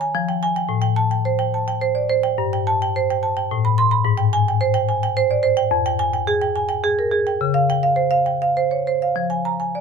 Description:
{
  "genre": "classical, contemporary piece for solo marimba",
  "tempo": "107 BPM",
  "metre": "3/4",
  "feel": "rubato",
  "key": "unclear",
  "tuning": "A4 = 440 Hz",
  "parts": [
    { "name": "marimba with medium hard mallets", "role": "solo", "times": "0.0-9.8 s", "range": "F2 to C6", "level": "-17 LUFS", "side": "equal", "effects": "none" }
  ],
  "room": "moderate small room reverb, RT60 0.5 s",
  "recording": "none",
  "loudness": "-17 LUFS",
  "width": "side -5 dB against mid",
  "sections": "0.0-9.8 A section",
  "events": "none",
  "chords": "0.1 Fmadd9; 0.7 Am7; 2.4 Gsus24; 3.5 Amadd9; 4.1 Abmaj7; 5.7 Fmadd9; 7.4 Dbmaj7; 9.1 Fm",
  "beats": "0.12 | 0.68 1.25 1.83 | 2.39 2.96 3.51 | 4.06 4.61 5.17 | 5.71 6.27 6.83 | 7.40 7.96 8.55 | 9.14 9.74"
}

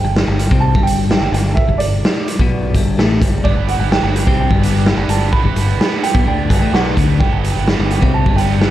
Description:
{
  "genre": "indie rock",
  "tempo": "128 BPM",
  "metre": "4/4",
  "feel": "straight",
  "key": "G major",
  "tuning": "A4 = 440 Hz",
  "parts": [
    { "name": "dark upright piano", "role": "melody", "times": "0.0-8.7 s", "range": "D5 to B5", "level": "-22 LUFS", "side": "right 6 dB", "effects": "tape echo" },
    { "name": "twelve-string electric guitar", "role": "riff", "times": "0.0-8.7 s", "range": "G2 to D3", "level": "-20 LUFS", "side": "left 5 dB", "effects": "spring reverb" },
    { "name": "growling fingered electric bass", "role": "bass", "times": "0.0-8.7 s", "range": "G1 to D2", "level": "-18 LUFS", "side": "equal", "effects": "overdrive" },
    { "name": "raw garage drum kit", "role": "drums", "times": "0.2-8.7 s", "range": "hi-hat, kick drum, snare drum", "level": "-16 LUFS", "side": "equal", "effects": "none" },
    { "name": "raw garage guitar", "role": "riff", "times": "3.4-8.7 s", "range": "G3 to B4", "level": "-24 LUFS", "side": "right 9 dB", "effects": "overdrive, lush chorus, tape echo" }
  ],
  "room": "studio ambience",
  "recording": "dark, warm production",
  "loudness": "-12 LUFS",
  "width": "side -13 dB against mid",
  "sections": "0.0-8.7 A section",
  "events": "none",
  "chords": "0.0 G",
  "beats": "0.16 0.63 1.10 | 1.57 2.04 2.51 2.98 | 3.45 3.92 4.39 4.86 | 5.33 5.80 6.27 6.74 | 7.21 7.68 8.15 8.62"
}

